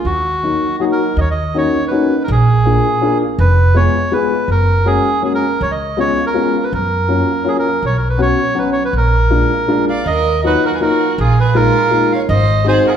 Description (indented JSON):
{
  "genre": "musette waltz",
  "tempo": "162 BPM",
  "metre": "3/4",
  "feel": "straight",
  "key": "Eb minor",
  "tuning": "A4 = 440 Hz",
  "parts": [
    { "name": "bandoneon", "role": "melody", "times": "0.0-12.9 s", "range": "Gb4 to F5", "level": "-17 LUFS", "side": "right 1 dB", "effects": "none" },
    { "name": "upright bass", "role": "bass", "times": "0.0-12.8 s", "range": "F1 to Gb2", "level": "-16 LUFS", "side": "right 1 dB", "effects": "none" },
    { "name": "dark upright piano", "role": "accompaniment", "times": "0.4-12.8 s", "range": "Gb3 to Ab4", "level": "-17 LUFS", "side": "left 3 dB", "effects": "none" },
    { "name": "warm violin", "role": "second line", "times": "9.9-12.9 s", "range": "F4 to D5", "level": "-22 LUFS", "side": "right 3 dB", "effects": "none" }
  ],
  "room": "wet large studio reverb, RT60 1.3 s",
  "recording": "band playing live in one room",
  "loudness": "-12 LUFS",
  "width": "side -8 dB against mid",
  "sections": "0.0-1.2 A section; 1.2-13.0 B section",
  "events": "none",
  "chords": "0.1 Ebm; 1.2 Ebm7; 2.3 Bb7; 3.4 Fdim; 4.5 Gbadd9; 5.6 Db7; 6.7 Gbmaj7; 7.8 Bsus2; 8.9 Bb7; 10.1 Ebmadd9; 11.2 Bb7sus4; 12.3 Ab7",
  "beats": "| 0.06 0.43 0.80 | 1.18 1.55 1.92 | 2.28 2.65 3.02 | 3.38 3.75 4.12 | 4.48 4.85 5.23 | 5.60 5.98 6.35 | 6.72 7.09 7.46 | 7.83 8.20 8.56 | 8.94 9.31 9.68 | 10.06 10.43 10.80 | 11.18 11.55 11.92 | 12.29 12.65"
}